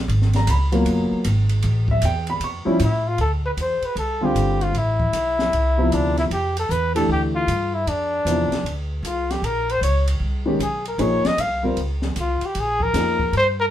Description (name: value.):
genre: modal jazz.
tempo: 154 BPM.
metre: 4/4.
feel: swing 65% on 8ths.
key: unclear.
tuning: A4 = 438 Hz.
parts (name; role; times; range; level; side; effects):
upright bass; bass; 0.0-13.7 s; F#1 to A2; -22 LUFS; equal; none.
compact cocktail drum kit; drums; 0.1-13.4 s; hi-hat, kick drum, ride cymbal, snare drum; -30 LUFS; equal; none.
dark baby grand piano; accompaniment; 0.4-13.2 s; C3 to C#6; -22 LUFS; left 1 dB; none.
dark trumpet; melody; 2.8-13.7 s; D4 to F5; -22 LUFS; left 1 dB; none.
room: moderate studio ambience, RT60 0.5 s.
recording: band playing live in one room.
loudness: -18 LUFS.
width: side -11 dB against mid.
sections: 0.0-3.2 A section; 3.2-13.7 B section.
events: none.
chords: 0.0 G#m11; 1.6 A7b13; 3.2 Dm9; 9.4 Bbm9.